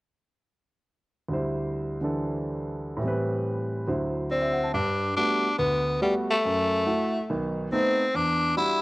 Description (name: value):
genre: jazz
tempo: 141 BPM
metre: 4/4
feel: swing 67% on 8ths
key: G major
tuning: A4 = 440 Hz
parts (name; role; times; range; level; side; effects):
- warm concert grand piano; accompaniment; 1.3-8.8 s; B1 to A5; -27 LUFS; right 1 dB; cassette tape
- growling tenor saxophone; melody; 4.3-8.8 s; G3 to E4; -24 LUFS; left 1 dB; cassette tape
room: light reverb, small room ambience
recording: home recording on cassette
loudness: -24 LUFS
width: side -20 dB against mid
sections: 1.3-4.7 A section; 4.7-8.8 B section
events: none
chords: 1.3 D7sus4; 3.0 Am7; 3.9 D7; 4.7 Gmaj9; 6.4 F#m7; 7.3 B7b9; 8.1 Em9